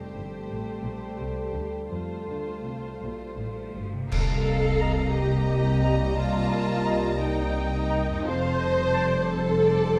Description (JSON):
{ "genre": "cinematic, emotional film score for orchestra", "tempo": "58 BPM (dotted quarters)", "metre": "6/8", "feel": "rubato", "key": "C dorian", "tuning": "A4 = 440 Hz", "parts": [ { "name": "rich symphonic violin section", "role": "melody", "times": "0.0-10.0 s", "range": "C5 to A5", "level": "-42 LUFS", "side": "equal", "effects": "none" }, { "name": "warm symphonic violin section", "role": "second line", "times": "0.0-10.0 s", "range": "F4 to Bb5", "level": "-38 LUFS", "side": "equal", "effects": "none" }, { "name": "warm symphonic viola section", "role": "accompaniment", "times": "0.0-10.0 s", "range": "A3 to C5", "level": "-31 LUFS", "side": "equal", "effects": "none" }, { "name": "dark French horn section", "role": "sustained chords", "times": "0.0-10.0 s", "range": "G3 to A4", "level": "-36 LUFS", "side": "equal", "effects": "none" }, { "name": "concert harp", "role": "arpeggios", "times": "0.0-10.0 s", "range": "F2 to F4", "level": "-36 LUFS", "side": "equal", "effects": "none" }, { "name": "rich symphonic cello section", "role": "bass", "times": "0.0-10.0 s", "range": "C2 to F3", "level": "-34 LUFS", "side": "equal", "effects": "none" }, { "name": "rich symphonic double bass section", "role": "bass", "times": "0.0-10.0 s", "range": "F1 to F2", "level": "-32 LUFS", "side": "equal", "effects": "none" }, { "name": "clash cymbals and concert bass drum", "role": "percussion", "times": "4.1-5.5 s", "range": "none", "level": "-36 LUFS", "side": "equal", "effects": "none" }, { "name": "dark clarinet", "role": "second line", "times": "4.8-9.1 s", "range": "C5 to Eb5", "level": "-38 LUFS", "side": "equal", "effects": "none" }, { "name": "warm oboe", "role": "second line", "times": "4.8-9.1 s", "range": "A5 to Bb5", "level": "-38 LUFS", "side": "equal", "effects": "none" } ], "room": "moderate scoring stage reverb, RT60 1.8 s", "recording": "dark, warm production", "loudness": "-26 LUFS", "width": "mono", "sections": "0.0-4.1 A section; 4.1-10.0 B section", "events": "band accent 4.1-4.8", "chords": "0.0 Fadd9; 4.1 Cm7; 8.3 Fadd9" }